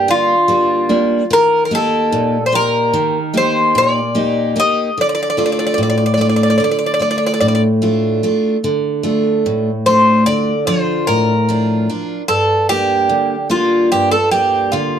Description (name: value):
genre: greek folk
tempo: 148 BPM (eighths)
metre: 9/8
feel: straight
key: D phrygian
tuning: A4 = 440 Hz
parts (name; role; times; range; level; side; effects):
- Greek bouzouki; melody; 0.0-15.0 s; F4 to Eb5; -14 LUFS; equal; none
- picked steel-string acoustic guitar; accompaniment; 0.0-15.0 s; G2 to G4; -16 LUFS; right 1 dB; none
room: moderate small room reverb, RT60 0.5 s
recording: none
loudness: -13 LUFS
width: side -8 dB against mid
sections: 0.0-8.6 A section; 8.6-15.0 B section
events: none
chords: 0.0 Gm; 1.3 Eb; 5.0 Dm; 12.3 Gm